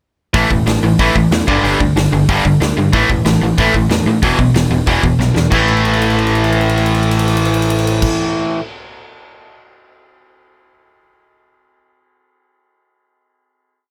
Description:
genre	punk rock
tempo	186 BPM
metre	4/4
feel	straight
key	unclear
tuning	A4 = 440 Hz
part	crunchy overdriven guitar	riff	0.3-8.6 s	E2 to A3	-19 LUFS	equal	none
part	distorted electric guitar	riff	0.3-8.6 s	E2 to A3	-18 LUFS	equal	overdrive
part	growling picked electric bass	bass	0.3-8.0 s	E1 to A2	-20 LUFS	equal	overdrive
part	big rock drum kit	drums	0.3-9.6 s	crash cymbal, hi-hat, kick drum, ride cymbal, snare drum	-22 LUFS	equal	none
room	little or no reverb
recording	none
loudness	-14 LUFS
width	mono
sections	0.3-5.5 verse; 5.5-8.1 final chord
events	drum fill 5.2-5.5, 5.7-8.0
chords	0.3 A5; 1.5 G5; 2.9 A5; 4.2 E5; 5.5 A5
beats	| 0.34 0.66 0.99 1.31 | 1.64 1.96 2.29 2.61 | 2.93 3.26 3.58 3.90 | 4.22 4.55 4.87 5.19 | 5.51 5.84 6.16 6.48 | 6.81 7.13 7.45 7.78

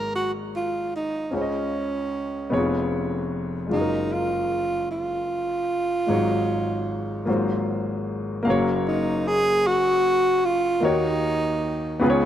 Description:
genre	gospel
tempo	50 BPM (dotted quarters)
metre	6/8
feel	straight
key	unclear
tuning	A4 = 440 Hz
part	breathy tenor saxophone	melody	0.0-12.3 s	Db4 to Bb4	-23 LUFS	right 1 dB	none
part	warm grand piano	accompaniment	0.0-12.3 s	F1 to F5	-25 LUFS	left 2 dB	none
room	moderate plate reverb, RT60 2.7 s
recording	rough home demo mix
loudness	-22 LUFS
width	side -10 dB against mid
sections	0.0-8.5 A section; 8.5-12.3 B section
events	none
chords	0.0 Ab9sus4; 1.3 Dbmaj9; 2.5 Db7/F; 3.7 Gbmaj9; 6.1 Ab7sus4; 7.3 Ab13; 8.5 Gbmaj7; 10.8 Ebm7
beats	0.13 | 1.32 2.52 | 3.71 4.90 | 6.09 7.28 | 8.46 9.64 | 10.83 12.01

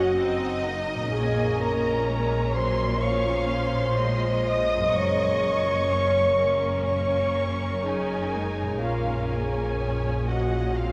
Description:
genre	cinematic, emotional film score for orchestra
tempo	62 BPM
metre	4/4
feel	rubato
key	Bb minor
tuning	A4 = 440 Hz
part	warm studio violin section	melody	0.0-10.9 s	Bb4 to F5	-36 LUFS	equal	none
part	dark studio violin section	second line	0.0-10.9 s	F5 to Eb6	-35 LUFS	equal	none
part	rich studio viola section	accompaniment	0.0-10.9 s	F3 to Eb4	-35 LUFS	equal	none
part	mellow French horn section	sustained chords	0.0-10.9 s	F4 to Eb5	-28 LUFS	equal	none
part	concert harp	arpeggios	0.0-10.9 s	Gb2 to Bb4	-38 LUFS	equal	none
part	warm studio cello section	bass	0.0-10.9 s	Gb2 to Bb2	-34 LUFS	equal	none
part	warm studio double bass section	bass	0.0-10.9 s	Gb1 to Bb1	-33 LUFS	equal	none
room	wet cathedral reverb, RT60 6.2 s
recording	recorded in a church or concert hall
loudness	-25 LUFS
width	mono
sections	0.0-10.9 A section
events	none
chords	0.0 Gbadd9; 1.1 Bbm7; 4.9 Gbadd9; 8.8 Bbm7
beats	0.16 | 1.12 2.07 3.01 3.97 | 4.94 5.89 6.84 7.82 | 8.80 9.78 10.77

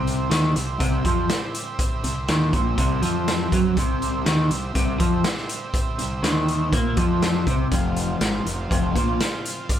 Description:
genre	psychedelic rock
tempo	122 BPM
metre	4/4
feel	straight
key	C mixolydian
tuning	A4 = 439 Hz
part	overdriven combo organ	sustained chords	0.0-9.8 s	C3 to E5	-31 LUFS	right 5 dB	lush chorus
part	electric guitar through a small old amp	riff	0.0-9.2 s	F2 to Bb3	-23 LUFS	equal	harmonic tremolo
part	fuzz fingered electric bass	bass	0.0-9.2 s	F1 to Bb2	-28 LUFS	equal	overdrive
part	raw garage drum kit	drums	0.1-9.8 s	hi-hat, kick drum, snare drum	-24 LUFS	equal	none
room	little or no reverb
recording	none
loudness	-20 LUFS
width	side -10 dB against mid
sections	0.0-9.8 A section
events	none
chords	0.0 C; 7.7 F5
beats	0.31 0.81 1.30 | 1.79 2.28 2.78 3.27 | 3.76 4.26 4.75 5.25 | 5.74 6.23 6.73 7.22 | 7.72 8.21 8.70 9.20 | 9.69

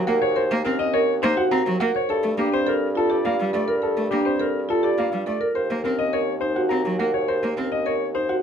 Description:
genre	classical, minimalist pattern music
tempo	104 BPM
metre	3/4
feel	straight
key	unclear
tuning	A4 = 439 Hz
part	rich cello	accompaniment	0.0-7.7 s	Gb3 to C4	-26 LUFS	right 1 dB	none
part	mellow bassoon	bass	0.0-8.4 s	Eb2 to G2	-27 LUFS	equal	none
part	warm concert grand piano	melody	0.1-8.4 s	G4 to Bb5	-24 LUFS	left 4 dB	none
part	marimba with soft mallets	arpeggios	0.1-8.4 s	C4 to C5	-24 LUFS	right 3 dB	none
room	light reverb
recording	minimal, uncompressed stereo recording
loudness	-20 LUFS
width	side -7 dB against mid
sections	0.0-8.4 A section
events	none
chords	0.0 Ebm7; 2.1 Gmadd9; 5.6 Ebm7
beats	| 0.36 0.94 1.51 | 2.09 2.67 3.24 | 3.82 4.40 4.97 | 5.55 6.13 6.71 | 7.28 7.86

